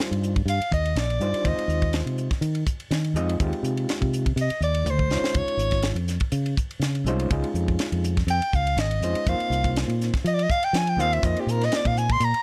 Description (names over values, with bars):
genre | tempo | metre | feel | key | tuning
electric jazz fusion | 123 BPM | 4/4 | swing 53% on 16ths | unclear | A4 = 440 Hz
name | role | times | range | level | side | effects
overdriven reed electric piano | accompaniment | 0.0-12.1 s | G3 to Eb5 | -32 LUFS | equal | fast tremolo, plate reverb
tight funk drum kit | drums | 0.0-12.4 s | hi-hat, kick drum, ride cymbal, snare drum, toms | -30 LUFS | equal | none
fingered electric bass | bass | 0.1-12.4 s | Ab1 to F3 | -27 LUFS | equal | none
clear soprano saxophone | melody | 0.5-12.4 s | G4 to C6 | -28 LUFS | equal | plate reverb
room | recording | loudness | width
light reverb | none | -24 LUFS | mono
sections
0.0-12.4 A section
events
soprano saxophone solo 0.0-12.4; drum fill 4.9-5.4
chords
0.0 Ebmaj13; 1.5 Ab6/Eb; 5.1 Dbmaj9; 9.3 F7sus4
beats
0.48 0.96 | 1.45 1.94 2.43 2.92 | 3.40 3.89 4.38 4.87 | 5.36 5.84 6.33 6.82 | 7.31 7.80 8.29 8.78 | 9.27 9.76 10.25 10.74 | 11.23 11.72 12.21